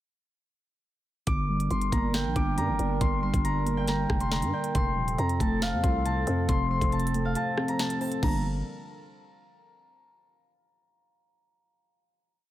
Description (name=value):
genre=hip hop, drill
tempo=138 BPM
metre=4/4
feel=half-time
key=G minor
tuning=A4 = 443 Hz
part: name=concert harp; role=melody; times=1.3-8.4 s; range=F5 to D6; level=-31 LUFS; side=left 1 dB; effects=tape echo
part: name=muted felt-like synth keys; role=accompaniment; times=1.3-8.4 s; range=C3 to D5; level=-32 LUFS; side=right 1 dB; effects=chorus
part: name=hollow soft pad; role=sustained chords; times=1.5-8.4 s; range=F3 to Bb4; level=-36 LUFS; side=equal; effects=chorus
part: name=growling 808-style bass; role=bass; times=1.3-8.6 s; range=Eb1 to G2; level=-29 LUFS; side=equal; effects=none
part: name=drill drum kit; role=drums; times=1.3-8.3 s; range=crash cymbal, hi-hat, kick drum, rim click, snare drum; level=-29 LUFS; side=equal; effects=none
room=little or no reverb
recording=none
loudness=-25 LUFS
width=side -14 dB against mid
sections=1.3-8.2 hook; 8.2-10.0 final chord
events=break 7.4-8.2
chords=1.3 Gm; 4.7 F; 8.2 Gm